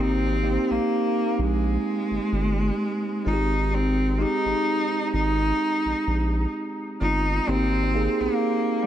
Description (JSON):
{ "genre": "contemporary R&B", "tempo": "64 BPM", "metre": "4/4", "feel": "swing 54% on 16ths", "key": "Ab major", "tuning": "A4 = 440 Hz", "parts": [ { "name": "clear cello", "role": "melody", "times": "0.0-8.9 s", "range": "G3 to Eb4", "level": "-25 LUFS", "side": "left 1 dB", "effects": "dub echo" }, { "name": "bell-like tine electric piano", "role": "accompaniment", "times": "0.0-8.9 s", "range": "Ab3 to Ab4", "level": "-26 LUFS", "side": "right 2 dB", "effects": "phaser, dub echo" }, { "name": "saturated sub bass", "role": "bass", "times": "0.0-8.3 s", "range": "G1 to Bb1", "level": "-25 LUFS", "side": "equal", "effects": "none" } ], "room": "studio reverb", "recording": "echo-heavy mix", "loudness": "-21 LUFS", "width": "side -11 dB against mid", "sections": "0.0-8.9 A section", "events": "none", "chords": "0.0 Abmaj9; 3.3 Fm9/Ab (rootless); 7.5 Abmaj9" }